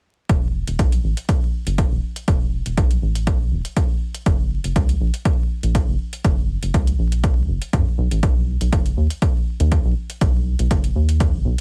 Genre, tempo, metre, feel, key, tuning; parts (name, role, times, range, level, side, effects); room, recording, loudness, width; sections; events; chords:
deep house; 121 BPM; 4/4; swing 53% on 16ths; E dorian; A4 = 440 Hz
rubbery square bass; bass; 0.3-11.6 s; E1 to F#2; -22 LUFS; equal; sidechain pumping
electronic hi-hat; drums; 0.3-11.6 s; -38 LUFS; equal; small room ambience
electronic kick drum; drums; 0.3-11.3 s; -22 LUFS; equal; small room ambience
little or no reverb; heavily compressed radio sound, vinyl crackle; -20 LUFS; mono
0.3-11.6 A section
filter sweep on analog synth bass 0.3-11.6